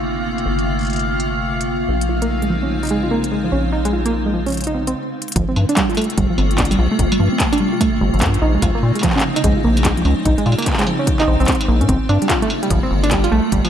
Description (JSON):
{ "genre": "IDM", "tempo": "147 BPM", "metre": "4/4", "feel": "swing 62% on 16ths", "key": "unclear", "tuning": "A4 = 441 Hz", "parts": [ { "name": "icy glass pad", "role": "sustained chords", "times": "0.0-13.7 s", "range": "C3 to F4", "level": "-22 LUFS", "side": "equal", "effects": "chorus, built-in reverb" }, { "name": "deep acid bass", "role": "bass", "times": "0.0-13.6 s", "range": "G1 to Bb2", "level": "-19 LUFS", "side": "left 1 dB", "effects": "none" }, { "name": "bubbling stepped-filter texture", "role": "texture", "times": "0.0-4.9 s", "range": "F5", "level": "-29 LUFS", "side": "left 1 dB", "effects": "chorus, built-in reverb" }, { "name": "industrial drum kit", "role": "drums", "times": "0.4-13.7 s", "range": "handclaps, hi-hat, struck metal", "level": "-23 LUFS", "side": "equal", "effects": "low-pass filter on hats, low-pass filter on perc, low-pass filter on snare, analog delay" }, { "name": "warbly dusty pluck", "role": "arpeggios", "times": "2.1-13.7 s", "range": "F3 to F4", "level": "-19 LUFS", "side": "right 2 dB", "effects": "chorus, analog delay" }, { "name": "electronic kick drum", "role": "drums", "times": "5.4-13.6 s", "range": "none", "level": "-21 LUFS", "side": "left 1 dB", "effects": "none" } ], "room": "moderate echo chamber reverb, RT60 1.7 s", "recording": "echo-heavy mix", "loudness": "-15 LUFS", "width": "side -9 dB against mid", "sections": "0.0-5.4 A section; 5.4-13.7 B section", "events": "stop 5.0-5.4; drum fill 5.2", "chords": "0.0 Gm11; 1.9 Bbm11; 5.4 Gm11; 8.4 Bbm11; 11.9 Gm11" }